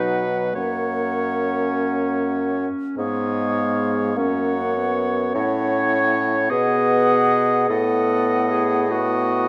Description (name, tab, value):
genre	classical, slow romantic movement for wind quintet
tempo	50 BPM (dotted quarters)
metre	6/8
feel	rubato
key	unclear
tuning	A4 = 440 Hz
part	concert flute	melody	0.0-9.5 s	E#5 to F#5	-30 LUFS	equal	none
part	clear oboe	second line	0.0-9.5 s	B4 to D#5	-29 LUFS	equal	none
part	clear French horn	accompaniment	0.0-9.5 s	F#3 to C#4	-29 LUFS	equal	none
part	warm clarinet	accompaniment	0.0-9.5 s	B3 to C#5	-25 LUFS	equal	none
part	clear bassoon	bass	0.0-9.5 s	F#2 to B2	-26 LUFS	equal	none
room	wet recital hall reverb, RT60 1.6 s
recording	dark, warm production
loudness	-21 LUFS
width	mono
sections	0.0-9.5 A section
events	none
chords	0.0 B; 0.5 F#; 3.0 C#7/G#; 4.2 F#; 5.4 F#m/A; 6.5 B; 7.7 B7/A